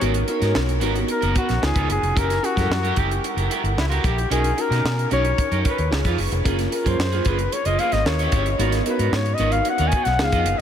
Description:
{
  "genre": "polished 1980s jazz-funk pop",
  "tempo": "112 BPM",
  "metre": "4/4",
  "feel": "straight",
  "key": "F# major",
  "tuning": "A4 = 440 Hz",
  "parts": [
    { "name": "warm flugelhorn", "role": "melody", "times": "0.0-10.6 s", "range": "E4 to G#5", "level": "-24 LUFS", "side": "left 2 dB", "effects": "analog delay" },
    { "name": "bell-like FM electric piano", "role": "accompaniment", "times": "0.0-10.6 s", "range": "G3 to C#5", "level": "-27 LUFS", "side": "left 1 dB", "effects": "tremolo, analog chorus" },
    { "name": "electric guitar at the edge of break-up", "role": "riff", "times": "0.0-10.5 s", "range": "A#3 to D#5", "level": "-27 LUFS", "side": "right 6 dB", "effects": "lush chorus" },
    { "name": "vintage muted fingered electric bass", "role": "bass", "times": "0.0-10.6 s", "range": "E#1 to B2", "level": "-23 LUFS", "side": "equal", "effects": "none" },
    { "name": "tight funk drum kit", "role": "drums", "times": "0.0-10.6 s", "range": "hi-hat, kick drum, snare drum", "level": "-26 LUFS", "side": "equal", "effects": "none" }
  ],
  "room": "moderate huge ambient reverb, RT60 7.4 s",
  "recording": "dreamy mix soaked in reverb",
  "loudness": "-18 LUFS",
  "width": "side -9 dB against mid",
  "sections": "0.0-10.6 A section",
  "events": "flugelhorn solo 0.0-10.6",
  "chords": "0.0 G#m9; 1.6 C#9; 2.2 F#7b9; 4.3 Bmaj9; 5.9 C#9; 6.5 F#maj9; 8.1 D#7b9; 8.6 G#m9",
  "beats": "| 0.02 0.56 1.09 1.63 | 2.17 2.70 3.24 3.77 | 4.31 4.85 5.38 5.92 | 6.45 6.99 7.53 8.06 | 8.60 9.13 9.67 10.21"
}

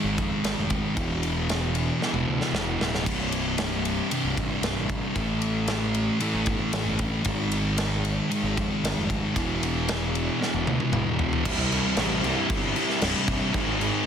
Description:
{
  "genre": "quiet-loud alternative rock",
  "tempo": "114 BPM",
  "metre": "4/4",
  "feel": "straight",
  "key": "C major",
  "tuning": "A4 = 437 Hz",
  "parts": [
    { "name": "thick fuzz guitar", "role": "riff", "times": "0.0-14.1 s", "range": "C2 to Ab4", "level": "-26 LUFS", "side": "equal", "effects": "distortion" },
    { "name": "fuzz picked electric bass", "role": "bass", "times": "0.0-13.9 s", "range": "C1 to F2", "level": "-31 LUFS", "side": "equal", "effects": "overdrive" },
    { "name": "big rock drum kit", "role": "drums", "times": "0.2-13.9 s", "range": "crash cymbal, kick drum, ride cymbal, snare drum, toms", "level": "-28 LUFS", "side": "equal", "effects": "soft clipping on kick" }
  ],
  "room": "moderate large studio reverb, RT60 1.1 s",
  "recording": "dense, heavily limited modern master",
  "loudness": "-23 LUFS",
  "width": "side -8 dB against mid",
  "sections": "0.0-11.4 A section; 11.4-14.1 B section",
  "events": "drum fill 2.0-3.1, 10.4-11.4",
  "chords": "0.0 Ab5; 1.0 E5; 3.1 C5; 5.2 A5; 7.3 Ab5; 9.3 E5; 11.4 C; 13.5 Ab",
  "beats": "0.44 | 0.96 1.49 2.01 2.54 | 3.06 3.58 4.11 4.63 | 5.16 5.68 6.20 6.73 | 7.25 7.78 8.30 8.82 | 9.35 9.87 10.39 10.92 | 11.44 11.96 12.49 13.01 | 13.53 14.06"
}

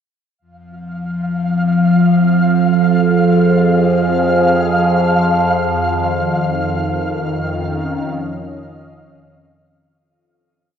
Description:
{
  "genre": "dark ambient drone",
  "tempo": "50 BPM",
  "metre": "4/4",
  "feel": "straight",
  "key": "F minor",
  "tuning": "A4 = 441 Hz",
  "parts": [
    { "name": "sweeping resonant pad", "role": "sustained chords", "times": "0.4-10.0 s", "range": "F2 to Eb5", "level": "-23 LUFS", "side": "equal", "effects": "chorus, shimmer reverb" },
    { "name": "overtone-sweeping drone", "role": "drone", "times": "0.9-10.1 s", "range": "F2 to F3", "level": "-14 LUFS", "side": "right 1 dB", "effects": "chorus, built-in reverb" },
    { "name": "flickering grainy texture", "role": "texture", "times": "1.3-10.0 s", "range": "F5", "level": "-21 LUFS", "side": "equal", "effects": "built-in reverb, shimmer reverb" }
  ],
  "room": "wet cathedral reverb, RT60 6.2 s",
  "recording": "none",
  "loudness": "-13 LUFS",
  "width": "side -8 dB against mid",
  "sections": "0.4-10.0 A section",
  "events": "fade-in on analog synth pad 0.4-10.0; fade-out 5.2-10.0",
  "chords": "0.4 Fm; 5.2 Dbadd9/F",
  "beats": "| 0.41 1.61 2.81 4.01 | 5.21 6.41 7.61 8.81"
}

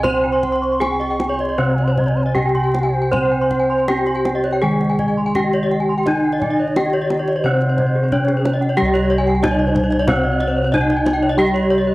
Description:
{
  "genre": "Balinese gamelan",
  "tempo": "78-92 BPM",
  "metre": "4/4",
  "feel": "straight",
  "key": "C pelog",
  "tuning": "A4 = 440 Hz",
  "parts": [
    { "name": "gamelan-type bronze metallophone", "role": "melody", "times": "0.0-11.9 s", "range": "C4 to C5", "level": "-20 LUFS", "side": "equal", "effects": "none" },
    { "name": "bright reedy bansuri", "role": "second line", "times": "0.0-8.6 s", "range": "Ab4 to Db6+24c", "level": "-27 LUFS", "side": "right 1 dB", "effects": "none" },
    { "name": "gamelan-type bronze metallophone", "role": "accompaniment", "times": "0.0-11.9 s", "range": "C3 to C4", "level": "-24 LUFS", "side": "equal", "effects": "none" },
    { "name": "gamelan-type bronze metallophone", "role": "arpeggios", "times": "0.0-11.9 s", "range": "Ab4-20c to C6", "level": "-23 LUFS", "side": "left 2 dB", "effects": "none" },
    { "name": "gamelan-type bossed gongs", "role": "bass", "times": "0.0-11.9 s", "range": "C2 to C5", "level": "-22 LUFS", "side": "equal", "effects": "none" },
    { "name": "kendang", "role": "percussion", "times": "0.0-11.6 s", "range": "none", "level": "-27 LUFS", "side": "equal", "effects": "none" },
    { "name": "gamelan-type bronze metallophone", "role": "arpeggios", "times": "0.1-11.9 s", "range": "Ab4-20c to Db6+20c", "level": "-26 LUFS", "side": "right 3 dB", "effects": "none" }
  ],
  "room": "light reverb, small room reverb",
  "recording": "dry, gritty hardware recording, vinyl crackle",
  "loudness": "-15 LUFS",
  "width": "side -19 dB against mid",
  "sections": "0.0-8.8 A section; 8.8-11.9 B section",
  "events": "none",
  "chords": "none",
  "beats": "| 0.04 0.81 1.58 2.35 | 3.12 3.88 4.63 5.35 | 6.07 6.77 7.45 8.12 | 8.78 9.43 10.08 10.73 | 11.39"
}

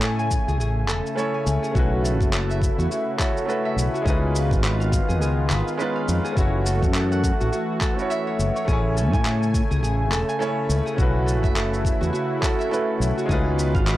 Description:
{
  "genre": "sunset chillout",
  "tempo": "104 BPM",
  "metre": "4/4",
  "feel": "swing 58% on 16ths",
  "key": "A lydian",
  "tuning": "A4 = 441 Hz",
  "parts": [
    { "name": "clear concert grand piano", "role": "accompaniment", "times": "0.0-14.0 s", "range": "G#3 to G#5", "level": "-28 LUFS", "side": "right 1 dB", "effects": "auto-pan, analog delay" },
    { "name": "lush unison pad", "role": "sustained chords", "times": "0.0-14.0 s", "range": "C#3 to G#5", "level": "-29 LUFS", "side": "left 1 dB", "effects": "chorus" },
    { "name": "Celtic harp", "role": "arpeggios", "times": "0.0-14.0 s", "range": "F#4 to G#5", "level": "-28 LUFS", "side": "right 1 dB", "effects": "analog delay" },
    { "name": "fretless electric bass", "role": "bass", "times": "0.0-14.0 s", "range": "E1 to A2", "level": "-22 LUFS", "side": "equal", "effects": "transformer saturation, lush chorus" },
    { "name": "electronic handclaps and shaker", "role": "drums", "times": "0.0-14.0 s", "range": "none", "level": "-30 LUFS", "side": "equal", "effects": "none" },
    { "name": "electronic kick drum", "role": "drums", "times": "0.3-13.8 s", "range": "none", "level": "-23 LUFS", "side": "equal", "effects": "none" }
  ],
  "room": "little or no reverb",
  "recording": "dry, gritty hardware recording",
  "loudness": "-20 LUFS",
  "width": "side -15 dB against mid",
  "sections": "0.0-14.0 A section",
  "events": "none",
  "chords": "0.0 Amaj7; 1.8 B9sus4; 4.1 C#9; 6.4 F#m7; 8.7 Amaj7; 11.0 B9sus4; 13.3 C#9",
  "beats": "0.03 0.60 1.18 | 1.76 2.33 2.91 3.49 | 4.06 4.64 5.22 5.79 | 6.37 6.95 7.53 8.10 | 8.68 9.26 9.83 10.41 | 10.99 11.56 12.14 12.72 | 13.29 13.87"
}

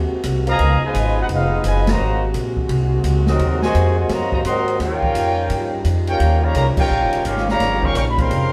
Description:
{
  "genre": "jazz, big band swing",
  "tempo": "171 BPM",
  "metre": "4/4",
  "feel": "swing 65% on 8ths",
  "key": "Ab major",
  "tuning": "A4 = 442 Hz",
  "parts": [
    { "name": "mellow trombone section", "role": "sustained chords", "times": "0.0-8.5 s", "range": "C3 to Gb4", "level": "-28 LUFS", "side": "equal", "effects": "none" },
    { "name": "upright bass", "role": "bass", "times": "0.0-8.5 s", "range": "Eb1 to Ab2", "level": "-22 LUFS", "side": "equal", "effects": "none" },
    { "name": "open jazz drum kit", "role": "drums", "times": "0.2-8.4 s", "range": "crash cymbal, hi-hat, kick drum, ride cymbal, snare drum", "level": "-28 LUFS", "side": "equal", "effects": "none" },
    { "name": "clear trumpet section", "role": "melody", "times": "0.5-8.5 s", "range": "C4 to Db6", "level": "-24 LUFS", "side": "equal", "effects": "none" },
    { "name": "muted trombone section", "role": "second line", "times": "0.5-8.5 s", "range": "Cb3 to G4", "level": "-26 LUFS", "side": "equal", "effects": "none" }
  ],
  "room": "wet stone room reverb, RT60 1.2 s",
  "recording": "band playing live in one room",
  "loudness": "-18 LUFS",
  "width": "mono",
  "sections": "0.0-8.5 A section",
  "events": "band accent 1.8, 6.7",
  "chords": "0.0 Ab9; 0.6 Db9; 2.0 Ab9; 4.8 Eb9",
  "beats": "0.24 | 0.59 0.94 1.29 1.64 | 1.99 2.34 2.69 3.04 | 3.39 3.74 4.09 4.45 | 4.80 5.15 5.50 5.85 | 6.20 6.55 6.90 7.25 | 7.61 7.96 8.31"
}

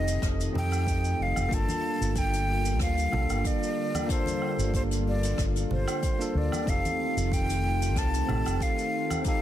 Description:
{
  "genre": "sunset chillout",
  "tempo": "93 BPM",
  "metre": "4/4",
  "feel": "swing 53% on 16ths",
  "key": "G minor",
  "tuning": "A4 = 443 Hz",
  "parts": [
    { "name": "breathy mellow silver concert flute", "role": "melody", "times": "0.0-9.4 s", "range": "C5 to A5", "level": "-31 LUFS", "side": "equal", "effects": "tape echo" },
    { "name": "bell-like tine electric piano", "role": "accompaniment", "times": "0.0-9.4 s", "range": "Bb3 to A4", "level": "-33 LUFS", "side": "moving between left 4 dB and right 3 dB", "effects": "auto-pan" },
    { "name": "lush unison pad", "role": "sustained chords", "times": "0.0-9.4 s", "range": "D3 to Eb5", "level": "-35 LUFS", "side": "left 1 dB", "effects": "chorus" },
    { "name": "fingered electric bass", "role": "bass", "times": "0.0-8.6 s", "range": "F1 to F2", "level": "-28 LUFS", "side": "equal", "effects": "tube saturation" },
    { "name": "jazz brush drum kit", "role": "drums", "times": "0.1-9.4 s", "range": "hi-hat, rim click, shaker, woodblock", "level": "-37 LUFS", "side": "right 1 dB", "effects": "none" },
    { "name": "electronic kick drum", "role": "drums", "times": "0.2-9.4 s", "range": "none", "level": "-30 LUFS", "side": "equal", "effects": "none" },
    { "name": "congas", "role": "percussion", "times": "0.6-9.2 s", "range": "none", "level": "-36 LUFS", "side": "right 1 dB", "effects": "none" }
  ],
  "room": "light reverb, small room reverb",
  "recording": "dense, heavily limited modern master",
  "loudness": "-25 LUFS",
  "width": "side -12 dB against mid",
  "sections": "0.0-9.4 A section",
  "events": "none",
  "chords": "0.0 F7; 1.5 Gm7; 6.7 F7",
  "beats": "0.22 0.87 | 1.51 2.16 2.80 3.45 | 4.09 4.74 5.38 6.03 | 6.67 7.32 7.96 8.61 | 9.25"
}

